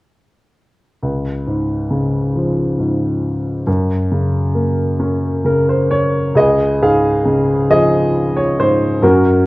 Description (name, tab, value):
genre	classical, lyrical solo piano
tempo	68 BPM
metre	3/4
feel	rubato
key	Db major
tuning	A4 = 440 Hz
part	warm grand piano	solo	1.0-9.5 s	Db2 to F5	-13 LUFS	equal	none
room	moderate recital hall reverb, RT60 1.3 s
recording	worn, warbling old tape, cassette tape, warbly pitch drift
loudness	-13 LUFS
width	side -20 dB against mid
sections	1.0-6.4 A section; 6.4-9.5 B section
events	none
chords	1.0 Db; 3.7 Gb; 6.4 Db